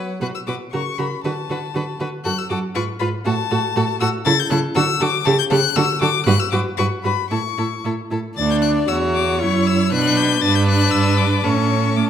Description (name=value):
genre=quick classical-period movement for string quartet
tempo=118 BPM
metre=2/4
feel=rubato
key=B minor, D major from 4.3 s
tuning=A4 = 445 Hz
part: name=clear violin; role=melody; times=0.0-12.1 s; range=F#5 to A6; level=-22 LUFS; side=left 10 dB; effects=none
part: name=clear violin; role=second line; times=0.0-12.1 s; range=A4 to D5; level=-26 LUFS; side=left 4 dB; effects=none
part: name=clear viola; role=accompaniment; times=0.0-12.1 s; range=F#3 to G4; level=-22 LUFS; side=right 1 dB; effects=none
part: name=rich cello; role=bass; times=0.2-12.1 s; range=D2 to A3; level=-21 LUFS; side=right 3 dB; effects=none
room=wet recital hall reverb, RT60 1.3 s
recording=none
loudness=-17 LUFS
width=side -9 dB against mid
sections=0.2-8.4 A section; 8.4-12.1 B section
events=none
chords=0.2 B5; 0.7 F#/C#; 1.2 Bm/D; 2.2 F#m; 2.8 C#7/G# (rootless); 3.3 F#m/A; 4.3 A/C#; 4.8 D; 5.3 A7/C#; 5.8 D; 6.3 Gmaj7; 7.3 A; 8.4 D; 9.4 F#5; 9.9 Bm; 10.4 Em7/G; 11.4 A